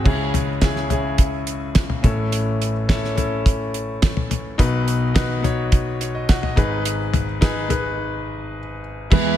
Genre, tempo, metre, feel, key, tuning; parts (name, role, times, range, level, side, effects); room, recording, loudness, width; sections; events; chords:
piano-driven pop; 106 BPM; 4/4; straight; A4 = 440 Hz
clear grand piano; accompaniment; 0.0-9.4 s; G#1 to F#5; -22 LUFS; left 2 dB; slapback echo
damped 70s drum kit; drums; 0.1-9.2 s; crash cymbal, hi-hat, kick drum, snare drum, toms; -19 LUFS; equal
fingerpicked steel-string acoustic guitar; riff; 9.1-9.4 s; E3 to G#4; -19 LUFS; right 13 dB
light reverb, small room ambience; -18 LUFS; side -11 dB against mid
0.1-9.1 A section
break 8.0-9.1
0.1 C#m; 2.0 A; 4.6 B; 6.6 G#m